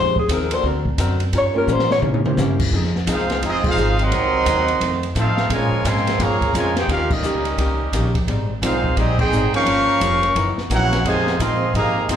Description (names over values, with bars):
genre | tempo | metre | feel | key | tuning
jazz, big band swing | 173 BPM | 4/4 | swing 63% on 8ths | F minor | A4 = 440 Hz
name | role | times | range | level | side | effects
mellow alto saxophone | melody | 0.0-2.0 s | Ab4 to Db5 | -20 LUFS | left 3 dB | slapback echo
archtop guitar, miked and amplified | accompaniment | 0.0-12.2 s | F2 to Bb4 | -26 LUFS | left 4 dB | slapback echo
warm concert grand piano | accompaniment | 0.0-2.7 s | Ab3 to C5 | -26 LUFS | right 3 dB | slapback echo
upright bass | bass | 0.0-12.2 s | F1 to C3 | -22 LUFS | equal | none
open jazz drum kit | drums | 0.2-12.2 s | crash cymbal, hi-hat, kick drum, ride cymbal, snare drum, toms | -25 LUFS | equal | none
clear trumpet section | melody | 3.1-12.2 s | C4 to Db6 | -21 LUFS | equal | slapback echo
bright trombone section | second line | 3.1-12.2 s | C3 to Ab4 | -24 LUFS | right 4 dB | slapback echo
room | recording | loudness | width
light reverb, studio reverb | live gig heard through the venue's PA, club reverb | -16 LUFS | side -9 dB against mid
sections
0.0-2.7 A section; 2.7-12.2 B section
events
alto saxophone solo 0.0-2.7; drum fill 1.7-2.4; band accent 3.6, 7.1, 9.1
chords
0.0 Fm7; 0.6 D7b13; 1.3 Gm7b5; 2.0 C7b9; 2.7 Fm7; 4.1 Cm7b5; 4.8 F7; 5.5 Bbm7; 6.9 Eb7; 8.3 Abmaj7; 9.7 Gm7b5; 10.4 Gb6; 11.1 Fm7